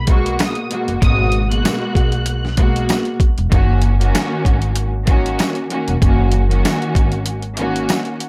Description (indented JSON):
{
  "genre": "hip hop, boom-bap hip-hop",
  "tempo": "96 BPM",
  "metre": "4/4",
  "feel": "swing 54% on 16ths",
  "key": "G# minor",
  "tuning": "A4 = 440 Hz",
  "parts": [
    { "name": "rich studio violin section", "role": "melody", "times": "0.0-3.0 s", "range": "C#6 to F#6", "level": "-28 LUFS", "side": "equal", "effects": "high-pass filter, low-pass filter" },
    { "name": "upright bass", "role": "bass", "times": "0.0-7.9 s", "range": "E1 to B1", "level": "-21 LUFS", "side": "equal", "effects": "none" },
    { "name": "warm symphonic string section", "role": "accompaniment", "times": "0.1-8.2 s", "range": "B2 to F#4", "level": "-23 LUFS", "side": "equal", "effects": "high-pass filter, low-pass filter" },
    { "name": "boom bap sampler-style drum kit", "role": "drums", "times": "0.1-8.3 s", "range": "hi-hat, kick drum, rim click, snare drum", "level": "-19 LUFS", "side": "equal", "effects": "none" },
    { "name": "tambourine", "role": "percussion", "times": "0.4-8.1 s", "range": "none", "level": "-34 LUFS", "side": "equal", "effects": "none" }
  ],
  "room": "little or no reverb",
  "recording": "none",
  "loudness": "-17 LUFS",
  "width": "mono",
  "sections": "0.0-8.3 A section",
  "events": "break 7.3-8.3",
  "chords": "0.0 G#m9; 3.5 D#m7"
}